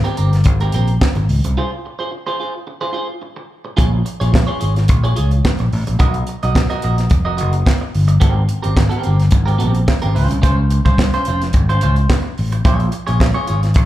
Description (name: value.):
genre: disco.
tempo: 108 BPM.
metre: 4/4.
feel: straight.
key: Bb dorian.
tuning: A4 = 440 Hz.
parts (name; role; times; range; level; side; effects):
clean electric guitar; accompaniment; 0.0-13.8 s; C4 to D#5; -23 LUFS; right 2 dB; slapback echo.
tight funk drum kit; drums; 0.0-13.9 s; handclaps, hi-hat, kick drum, snare drum; -16 LUFS; equal; none.
fingered electric bass; bass; 0.2-13.9 s; F1 to Db2; -15 LUFS; equal; none.
room: small room ambience.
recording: live gig heard through the venue's PA, club reverb.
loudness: -14 LUFS.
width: side -14 dB against mid.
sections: 0.0-3.8 A section; 3.8-13.9 A section.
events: break 1.6-3.8.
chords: 0.0 Abmaj9; 1.3 Dbmaj7 (rootless); 3.8 Bbm7; 6.0 Bmaj7; 8.2 Abmaj9; 10.2 Dbmaj7; 12.7 Bbm7.